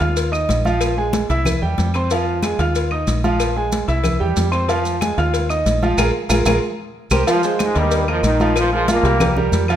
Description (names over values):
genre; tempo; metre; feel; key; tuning
latin, salsa; 186 BPM; 4/4; straight; F minor; A4 = 439 Hz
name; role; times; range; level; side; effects
clear concert grand piano; accompaniment; 0.0-9.8 s; F3 to F6; -20 LUFS; right 2 dB; none
deep dub fingered electric bass; bass; 0.0-9.8 s; Bb1 to F2; -20 LUFS; equal; none
congas; percussion; 0.0-9.8 s; none; -25 LUFS; left 1 dB; none
cowbell; percussion; 0.0-9.8 s; none; -27 LUFS; left 8 dB; none
maracas; percussion; 0.0-9.8 s; none; -31 LUFS; right 3 dB; none
claves; percussion; 0.3-9.8 s; none; -30 LUFS; left 3 dB; none
bright trombone section; melody; 7.3-9.3 s; G2 to F4; -20 LUFS; left 1 dB; none
room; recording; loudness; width
moderate large studio reverb, RT60 1.4 s; minimal, uncompressed stereo recording; -16 LUFS; side -10 dB against mid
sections
0.0-7.3 A section; 7.3-9.8 B section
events
band accent 6.0-7.3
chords
0.2 Ebsus2; 0.8 Bb5; 1.5 C; 2.1 Fm7; 2.8 Ebsus2; 3.4 Bb5; 4.0 C; 4.7 Fm7; 5.3 Ebsus2; 6.0 Bb5; 6.6 C5; 7.3 Fm7; 7.9 Ebadd9; 8.6 Bb5; 9.2 C5